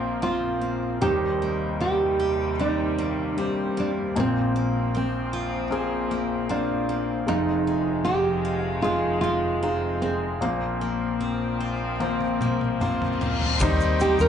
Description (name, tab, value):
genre	pop ballad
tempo	76 BPM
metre	4/4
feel	straight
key	Eb major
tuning	A4 = 440 Hz
part	clear concert grand piano	accompaniment	0.0-14.3 s	F1 to D5	-26 LUFS	left 3 dB	slapback echo
part	warm studio string section	sustained chords	0.0-14.3 s	Eb2 to G5	-33 LUFS	equal	none
part	picked steel-string acoustic guitar	arpeggios	0.0-14.3 s	F2 to G4	-31 LUFS	right 2 dB	slapback echo
part	nylon-string guitar	melody	0.2-14.3 s	C4 to Bb4	-26 LUFS	right 3 dB	slapback echo
part	modern studio drum kit	drums	12.0-14.2 s	crash cymbal, kick drum, ride cymbal, toms	-28 LUFS	equal	none
part	reverse cymbal	sound effects	12.9-13.6 s	none	-31 LUFS	left 5 dB	none
part	vintage muted fingered electric bass	bass	13.6-14.3 s	Eb2	-24 LUFS	equal	none
part	egg shaker	percussion	13.6-14.3 s	none	-42 LUFS	left 3 dB	none
room	moderate club reverb, RT60 0.6 s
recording	live gig heard through the venue's PA, club reverb, nothing above 10.3 kHz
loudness	-22 LUFS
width	side -8 dB against mid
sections	0.0-13.6 A section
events	drum fill 12.0-13.6; reverse cymbal 12.9-13.6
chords	0.0 Bbsus2; 1.0 Eb6; 4.2 Bbsus2; 7.3 Fm7; 10.4 Bbsus2; 13.6 Eb6